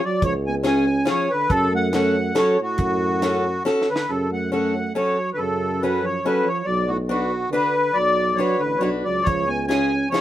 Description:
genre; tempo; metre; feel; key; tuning
alpine folk, alpine dance band; 139 BPM; 3/4; swing 53% on 8ths; F# harmonic minor; A4 = 438 Hz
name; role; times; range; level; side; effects
accordion; melody; 0.0-10.2 s; F#4 to G#5; -22 LUFS; left 1 dB; light tremolo tuning
dark euphonium; second line; 0.0-10.2 s; A2 to C#4; -26 LUFS; right 4 dB; none
warm tuba; bass; 0.2-10.1 s; A1 to F#2; -26 LUFS; equal; none
deep reggae drum kit; drums; 0.2-4.1, 9.3-10.2 s; hi-hat, kick drum, snare drum; -26 LUFS; equal; none
picked acoustic archtop guitar; accompaniment; 0.6-10.2 s; C#4 to B4; -22 LUFS; left 2 dB; none
room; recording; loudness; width
light reverb; minimal, uncompressed stereo recording; -19 LUFS; side -12 dB against mid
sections
0.0-4.1 A section; 4.1-10.2 A section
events
drum fill 3.7-4.1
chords
0.0 C#; 1.5 F#m; 6.7 Bm; 9.3 C#

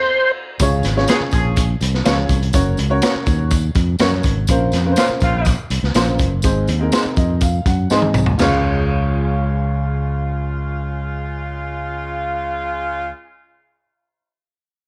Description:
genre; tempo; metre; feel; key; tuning
uptempo 1960s-style soul; 123 BPM; 4/4; straight; Db major; A4 = 440 Hz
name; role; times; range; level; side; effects
clear upright piano; accompaniment; 0.6-13.1 s; Db2 to Ab5; -25 LUFS; equal; none
fingered electric bass; bass; 0.6-13.1 s; Gb1 to Ab2; -22 LUFS; equal; none
crunchy breakbeat drum kit; drums; 0.6-8.5 s; crash cymbal, hi-hat, kick drum, snare drum, toms; -22 LUFS; equal; none
congas; percussion; 0.6-8.6 s; none; barely audible; none; none
tambourine; percussion; 0.6-8.6 s; none; -36 LUFS; equal; none
clear horn section; second line; 1.1-1.7, 5.0-13.1 s; Db3 to Ab4; -27 LUFS; equal; none
electric guitar through a small old amp; stabs; 1.1-13.2 s; Db4 to Db5; -28 LUFS; equal; analog chorus
room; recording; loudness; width
moderate spring reverb, RT60 1.3 s, small room ambience; none; -18 LUFS; mono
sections
0.6-8.4 A section; 8.4-12.3 B section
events
band accent 0.0-0.6; upright piano fill 6.9-8.4; drum fill 7.9-8.4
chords
0.0 N.C.; 0.6 Db; 2.5 Gb; 4.5 Bbmadd9; 6.4 Ab; 8.4 Db

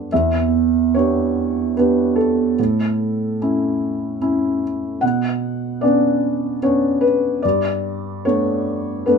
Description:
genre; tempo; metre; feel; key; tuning
neoclassical minimalist piano; 74 BPM; 3/4; rubato; B minor; A4 = 439 Hz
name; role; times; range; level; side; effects
felt-muted upright piano; solo; 0.0-9.2 s; E2 to F#5; -16 LUFS; right 1 dB; none
room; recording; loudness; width
light reverb; minimal, uncompressed stereo recording; -16 LUFS; side -5 dB against mid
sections
0.0-9.2 A section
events
none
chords
0.1 Em7; 2.6 A; 5.0 Bmadd9; 7.4 Gadd9

